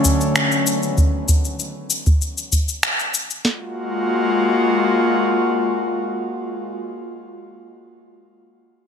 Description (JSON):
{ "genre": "sunset chillout", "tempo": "97 BPM", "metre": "4/4", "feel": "straight", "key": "F# major", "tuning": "A4 = 440 Hz", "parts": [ { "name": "airy breathy pad", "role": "sustained chords", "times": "0.0-6.7 s", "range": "D3 to F#4", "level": "-19 LUFS", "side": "left 1 dB", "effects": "chorus" }, { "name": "electronic shaker and finger snaps", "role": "drums", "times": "0.0-3.4 s", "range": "none", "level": "-20 LUFS", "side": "left 2 dB", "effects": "none" }, { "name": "soft vintage rhythm box", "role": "drums", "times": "0.1-3.6 s", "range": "kick drum, snare drum", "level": "-17 LUFS", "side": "equal", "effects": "none" } ], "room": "moderate lush hall reverb, RT60 1.8 s", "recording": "none", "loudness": "-17 LUFS", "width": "side -7 dB against mid", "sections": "0.0-3.5 A section; 3.5-5.9 B section", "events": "none", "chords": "0.0 Dmaj7; 0.7 B6; 3.5 F#maj9" }